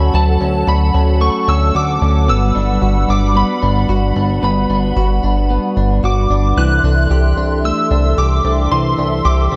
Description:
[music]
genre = dream pop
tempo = 112 BPM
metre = 4/4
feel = straight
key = unclear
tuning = A4 = 440 Hz
[part]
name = shimmering bell with halo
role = melody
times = 0.0-9.6 s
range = A5 to F#6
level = -22 LUFS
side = equal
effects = ensemble chorus, digital delay
[part]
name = hollow soft pad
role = sustained chords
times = 0.0-9.6 s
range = G3 to E6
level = -24 LUFS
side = equal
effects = ensemble chorus
[part]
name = direct-recorded clean electric guitar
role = arpeggios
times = 0.0-9.6 s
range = E3 to G4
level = -22 LUFS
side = equal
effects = subtle chorus, digital delay
[part]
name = chorused synth bass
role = bass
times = 0.0-9.6 s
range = G1 to D2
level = -17 LUFS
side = equal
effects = none
[sound]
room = moderate lush hall reverb, RT60 2.0 s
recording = dark, warm production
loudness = -15 LUFS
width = mono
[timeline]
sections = 0.0-9.6 A section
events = none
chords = 0.0 Dmaj7; 2.3 Gmaj7; 6.6 C69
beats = | 0.14 0.68 1.21 1.75 | 2.28 2.82 3.35 3.89 | 4.43 4.96 5.50 6.03 | 6.57 7.11 7.64 8.18 | 8.71 9.25

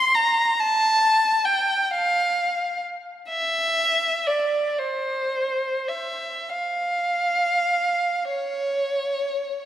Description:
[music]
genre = classical, free, expressive piece for unaccompanied violin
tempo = 21-46 BPM (dotted quarters)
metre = 6/8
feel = rubato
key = F major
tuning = A4 = 440 Hz
[part]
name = rich violin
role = solo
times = 0.0-9.7 s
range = C5 to C6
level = -20 LUFS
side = equal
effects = none
[sound]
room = wet church reverb, RT60 2.7 s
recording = none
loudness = -20 LUFS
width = side -11 dB against mid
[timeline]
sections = 0.0-9.7 A section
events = none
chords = none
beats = | 0.57 1.87 | 3.26 4.78 | 6.49 8.31

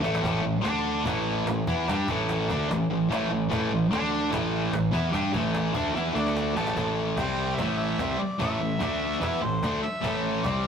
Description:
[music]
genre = garage rock duo or trio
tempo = 147 BPM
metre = 4/4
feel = straight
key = A minor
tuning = A4 = 440 Hz
[part]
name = fuzz guitar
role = riff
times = 0.0-10.7 s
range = A2 to G4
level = -25 LUFS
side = equal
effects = distortion
[part]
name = growling fingered electric bass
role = bass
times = 0.0-10.7 s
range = A1 to G2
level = -33 LUFS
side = equal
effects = overdrive
[part]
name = cajon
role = drums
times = 0.0-10.5 s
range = none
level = -35 LUFS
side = right 1 dB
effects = none
[part]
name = clear harmonica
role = melody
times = 6.2-10.7 s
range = C5 to A5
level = -32 LUFS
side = equal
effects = overdrive
[sound]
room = moderate stone room reverb, RT60 1.2 s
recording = rough rehearsal-room recording, tube saturation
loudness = -24 LUFS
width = side -7 dB against mid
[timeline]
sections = 0.0-6.8 A section; 6.8-10.7 B section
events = drum fill 0.0, 6.0-6.8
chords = 0.0 A5; 0.7 D5; 1.1 A5; 3.9 D5; 4.3 A5; 6.2 D5; 6.6 A5; 7.2 C5; 7.6 Am; 8.8 D5; 9.2 Am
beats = | 0.25 0.66 1.06 1.47 | 1.88 2.29 2.70 3.10 | 3.51 3.92 4.33 4.73 | 5.14 5.55 5.96 6.37 | 6.77 7.18 7.59 8.00 | 8.40 8.81 9.22 9.63 | 10.04 10.45

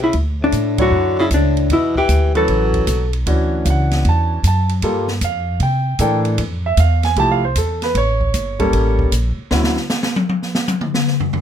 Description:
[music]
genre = jazz, small-group swing and bop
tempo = 154 BPM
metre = 4/4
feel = swing 66% on 8ths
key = D major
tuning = A4 = 440 Hz
[part]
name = vintage hollow-body jazz guitar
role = melody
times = 0.0-3.1 s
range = D4 to A4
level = -17 LUFS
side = left 2 dB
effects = none
[part]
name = bright tenor saxophone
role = second line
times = 0.0-3.1 s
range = A2 to F#3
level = -25 LUFS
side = right 2 dB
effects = none
[part]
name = upright bass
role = bass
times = 0.0-9.8 s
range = G1 to C3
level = -17 LUFS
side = equal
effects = none
[part]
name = open jazz drum kit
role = drums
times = 0.0-11.4 s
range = hi-hat, kick drum, ride cymbal, snare drum, toms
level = -22 LUFS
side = left 1 dB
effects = none
[part]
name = warm concert grand piano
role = accompaniment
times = 0.8-9.7 s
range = D3 to A5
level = -19 LUFS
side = right 1 dB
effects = none
[sound]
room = light reverb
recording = none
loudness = -15 LUFS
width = side -9 dB against mid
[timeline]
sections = 0.0-3.3 A section; 3.3-11.4 B section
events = band accent 0.7; drum solo 9.5-11.4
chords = 0.1 Dmaj9; 1.7 Em7; 2.5 A69; 3.3 Dmaj9; 4.8 Gm9; 5.6 C13; 6.4 Fmaj9; 7.9 A7b9; 9.5 Dmaj9; 10.3 N.C.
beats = | 0.14 0.53 0.92 1.31 | 1.70 2.09 2.48 2.87 | 3.26 3.65 4.04 4.44 | 4.83 5.22 5.61 6.00 | 6.39 6.78 7.17 7.56 | 7.95 8.34 8.73 9.12 | 9.51 9.90 10.29 10.68 | 11.07

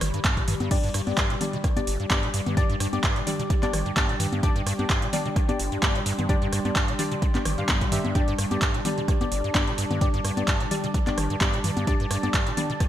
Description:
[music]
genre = acid house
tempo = 129 BPM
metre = 4/4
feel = swing 54% on 16ths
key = G major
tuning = A4 = 440 Hz
[part]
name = acid bass, square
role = riff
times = 0.0-12.8 s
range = G1 to G3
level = -29 LUFS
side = equal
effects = overdrive, ensemble chorus, digital delay
[part]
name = booming analog drum machine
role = drums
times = 0.0-12.9 s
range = congas, crash cymbal, handclaps, hi-hat, rim click, toms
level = -28 LUFS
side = equal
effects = gated reverb
[part]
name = warbly tape-like pad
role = texture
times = 0.0-12.9 s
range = G3 to D6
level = -35 LUFS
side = left 2 dB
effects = chorus, built-in reverb, sidechain pumping
[part]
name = electronic kick drum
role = drums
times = 0.2-12.9 s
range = none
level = -25 LUFS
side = equal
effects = overdrive
[part]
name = dark analog pad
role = sustained chords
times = 0.7-12.9 s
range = G3 to A5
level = -34 LUFS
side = right 1 dB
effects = chorus, sidechain pumping
[part]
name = deep mellow chord stab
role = stabs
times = 0.7-12.6 s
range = D4 to F5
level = -31 LUFS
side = left 2 dB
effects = chorus, digital delay
[sound]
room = light reverb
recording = bright 1980s-style digital production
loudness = -22 LUFS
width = side -12 dB against mid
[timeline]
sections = 0.0-12.9 A section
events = none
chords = 0.0 G5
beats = 0.24 | 0.71 1.18 1.64 2.10 | 2.57 3.04 3.50 3.97 | 4.43 4.90 5.36 5.83 | 6.29 6.76 7.22 7.69 | 8.15 8.62 9.08 9.55 | 10.01 10.48 10.94 11.41 | 11.87 12.34 12.80

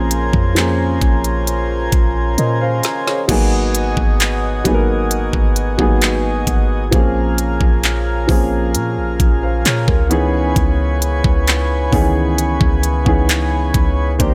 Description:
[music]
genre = contemporary R&B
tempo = 66 BPM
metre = 4/4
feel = straight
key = unclear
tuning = A4 = 440 Hz
[part]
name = warm baby grand piano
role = accompaniment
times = 0.0-14.3 s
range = Eb3 to F5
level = -22 LUFS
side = equal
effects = none
[part]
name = mellow accordion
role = sustained chords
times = 0.0-14.3 s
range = Cb3 to Ab5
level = -26 LUFS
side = equal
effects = none
[part]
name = clean 808-style bass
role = bass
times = 0.0-14.3 s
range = Ab1 to Bb2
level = -21 LUFS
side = equal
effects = none
[part]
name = trap drum kit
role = drums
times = 0.1-14.3 s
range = crash cymbal, handclaps, hi-hat, kick drum, snare drum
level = -19 LUFS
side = equal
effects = none
[sound]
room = little or no reverb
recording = none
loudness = -16 LUFS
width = mono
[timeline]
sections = 0.0-3.3 A section; 3.3-14.3 B section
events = drum fill 2.4-3.3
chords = 0.0 Bbm9; 3.3 Abm7; 6.9 Bbm7; 10.1 Dbm7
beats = 0.56 1.47 2.38 | 3.29 4.20 5.11 6.01 | 6.92 7.83 8.74 9.65 | 10.56 11.47 12.38 13.29 | 14.20

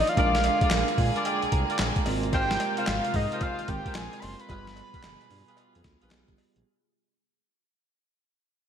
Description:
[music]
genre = R&B, new jack swing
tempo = 111 BPM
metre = 4/4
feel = swing 64% on 16ths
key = unclear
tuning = A4 = 440 Hz
[part]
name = fat analog lead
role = melody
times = 0.0-6.1 s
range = Eb5 to C6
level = -29 LUFS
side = left 1 dB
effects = ping-pong delay
[part]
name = tine electric piano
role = accompaniment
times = 0.0-6.7 s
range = F3 to Bb5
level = -33 LUFS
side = right 6 dB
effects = medium tremolo
[part]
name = warm studio string section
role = sustained chords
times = 0.0-6.6 s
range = B2 to D5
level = -36 LUFS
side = left 1 dB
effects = none
[part]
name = smooth synth bass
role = bass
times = 0.0-6.6 s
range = F#1 to Bb2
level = -30 LUFS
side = equal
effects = none
[part]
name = boom bap sampler-style drum kit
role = drums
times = 0.1-6.6 s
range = handclaps, hi-hat, kick drum, snare drum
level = -29 LUFS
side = equal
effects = gated reverb
[part]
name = dark horn section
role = stabs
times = 0.2-6.1 s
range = F4 to D5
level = -33 LUFS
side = left 1 dB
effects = none
[part]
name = cowbell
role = percussion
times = 0.2-6.5 s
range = none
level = -42 LUFS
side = left 6 dB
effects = none
[sound]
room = moderate lush hall reverb, RT60 1.8 s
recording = bright 1980s-style digital production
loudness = -23 LUFS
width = side -8 dB against mid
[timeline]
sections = 0.0-6.7 A section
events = fade-out 0.0-6.7; tine electric piano fill 0.7-2.3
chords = 0.2 Bb7; 2.1 Ab69; 4.5 G7b9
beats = | 0.17 0.71 1.25 1.79 | 2.33 2.87 3.41 3.95 | 4.49 5.03 5.57 6.11

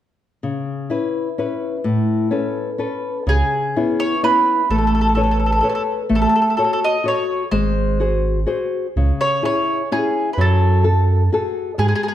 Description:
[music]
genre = italian folk, Italian serenade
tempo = 127 BPM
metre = 3/4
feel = straight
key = C# minor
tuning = A4 = 440 Hz
[part]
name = nylon-string guitar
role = accompaniment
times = 0.4-12.1 s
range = A2 to C#5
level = -20 LUFS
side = left 3 dB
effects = none
[part]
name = mandolin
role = melody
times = 3.3-12.1 s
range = G#4 to D#5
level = -19 LUFS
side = right 1 dB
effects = none
[part]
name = round analog bass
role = bass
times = 3.3-11.9 s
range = G#1 to G#2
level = -18 LUFS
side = right 1 dB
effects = none
[sound]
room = moderate recital hall reverb, RT60 1.3 s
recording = none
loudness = -16 LUFS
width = side -11 dB against mid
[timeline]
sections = 0.4-3.3 A section; 3.3-12.1 B section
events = none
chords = 0.4 C#m7; 1.8 Aadd9; 3.3 C#m7; 4.7 Aadd9; 6.1 F#m/A; 7.5 G#7; 9.0 C#m; 10.4 F#madd9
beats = | 0.42 0.90 1.37 | 1.84 2.31 2.79 | 3.27 3.75 4.23 | 4.70 5.18 5.65 | 6.11 6.58 7.05 | 7.52 8.00 8.47 | 8.96 9.44 9.91 | 10.38 10.85 11.32 | 11.79

